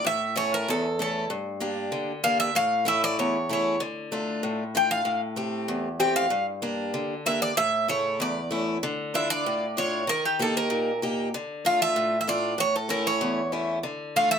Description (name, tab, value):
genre	greek folk, Greek bouzouki band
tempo	96 BPM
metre	2/4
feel	straight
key	D harmonic minor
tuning	A4 = 441 Hz
part	Greek bouzouki	melody	0.0-14.4 s	G4 to G5	-24 LUFS	right 1 dB	none
part	picked steel-string acoustic guitar	accompaniment	0.0-14.4 s	E2 to G4	-28 LUFS	left 1 dB	none
room	wet small room reverb, RT60 0.6 s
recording	none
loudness	-24 LUFS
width	side -7 dB against mid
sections	0.0-8.8 A section; 8.8-14.4 B section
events	none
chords	0.0 A; 1.3 Gm; 2.6 A; 3.8 Dm; 5.1 Am7; 6.3 Gm; 7.6 A; 8.8 Dmadd9; 10.1 Eb; 11.3 Dm; 12.6 A; 13.8 Dm